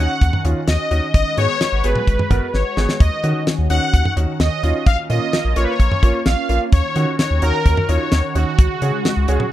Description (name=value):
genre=synth-pop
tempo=129 BPM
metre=4/4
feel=straight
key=unclear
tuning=A4 = 439 Hz
part: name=analog synth brass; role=melody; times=0.0-9.5 s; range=F#4 to F#5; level=-21 LUFS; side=equal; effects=chorus, ping-pong delay
part: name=warm concert grand piano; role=accompaniment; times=0.0-9.4 s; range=A#3 to A#4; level=-26 LUFS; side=right 1 dB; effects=none
part: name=phased analog pad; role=sustained chords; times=0.0-9.5 s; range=C#3 to B4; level=-26 LUFS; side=equal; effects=phaser, chorus
part: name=round analog bass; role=bass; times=0.0-9.4 s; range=G#1 to D#3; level=-18 LUFS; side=equal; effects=none
part: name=damped 70s drum kit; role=drums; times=0.2-9.5 s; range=hi-hat, kick drum, snare drum, toms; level=-17 LUFS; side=equal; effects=none
room=light reverb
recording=rough home demo mix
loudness=-15 LUFS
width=side -13 dB against mid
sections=0.0-9.5 A section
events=drum fill 2.5-3.0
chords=0.0 D#m7; 1.1 G#m7; 3.0 D#m7; 4.9 A#m; 6.7 D#m7; 8.6 C#sus4